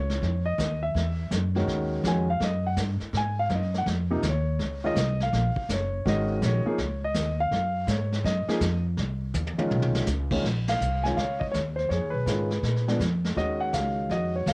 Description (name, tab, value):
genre	jazz piano trio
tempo	164 BPM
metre	4/4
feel	swing 65% on 8ths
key	Bb minor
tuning	A4 = 440 Hz
part	warm concert grand piano	melody	0.0-14.5 s	Bb2 to Ab5	-28 LUFS	equal	cassette tape
part	upright bass	bass	0.0-14.5 s	Gb1 to Bb2	-27 LUFS	equal	none
part	vintage brush drum kit	drums	0.1-14.5 s	brushed snare drum, crash cymbal, hi-hat, kick drum, ride cymbal, snare drum, toms	-32 LUFS	equal	cassette tape
room	little or no reverb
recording	home recording on cassette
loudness	-24 LUFS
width	side -30 dB against mid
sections	0.0-10.4 A section; 10.4-14.5 B section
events	grand piano solo 0.0-10.4; drum fill 9.3-10.1; band accent 10.6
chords	0.2 Ebsus2; 1.0 Esus2; 1.7 Ebm11; 3.1 Ab7(no3); 4.6 Db69; 6.1 Absus2; 6.8 Dbsus2; 7.5 Gbmaj7(no3); 9.0 Cm; 9.7 Badd9; 10.4 Bbmadd9; 11.9 Fm7b5; 12.6 Bb7(no3); 13.4 Ebm9